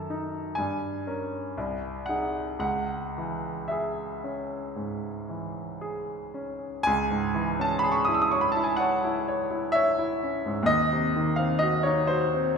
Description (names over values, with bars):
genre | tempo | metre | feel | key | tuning
classical, romantic nocturne for solo piano | 54-64 BPM | 4/4 | rubato | C# minor | A4 = 440 Hz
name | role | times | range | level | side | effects
clear baby grand piano | solo | 0.0-12.6 s | B#1 to E6 | -25 LUFS | equal | none
room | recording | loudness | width
wet recital hall reverb, RT60 1.6 s | recorded in a church or concert hall | -25 LUFS | side -6 dB against mid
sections
0.0-6.9 A section; 6.9-12.6 A section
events
none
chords
0.0 D#dim/F#; 0.6 Gdim; 1.6 G#7/B#; 2.6 C#m; 10.7 Cdim/Eb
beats
0.58 1.56 | 2.62 3.71 4.76 5.80 | 6.86 7.84 8.79 9.74 | 10.68 11.62